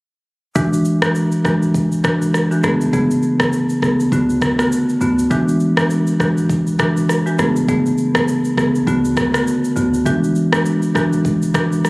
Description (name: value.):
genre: afrobeats.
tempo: 101 BPM.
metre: 4/4.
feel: swing 58% on 16ths.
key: unclear.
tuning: A4 = 441 Hz.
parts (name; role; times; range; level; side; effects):
marimba with medium mallets; accompaniment; 0.6-11.8 s; C#3 to G#4; -15 LUFS; equal; none.
warm 808-style bass; bass; 0.6-11.9 s; D1 to D2; -28 LUFS; equal; none.
afro-pop drum kit; drums; 0.6-11.9 s; kick drum, rim click, shaker; -21 LUFS; equal; none.
room: light reverb, digital ambience.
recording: recorded on a phone in the room, club reverb, compression.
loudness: -14 LUFS.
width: side -25 dB against mid.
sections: 0.6-11.9 A section.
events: none.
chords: 0.6 E9; 2.6 Amaj9; 4.1 D6; 5.3 E9; 7.4 Amaj9; 8.9 D6; 10.1 E9.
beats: | 0.56 1.15 1.75 2.34 | 2.93 3.53 4.12 4.72 | 5.31 5.90 6.50 7.09 | 7.69 8.28 8.87 9.47 | 10.06 10.66 11.25 11.85.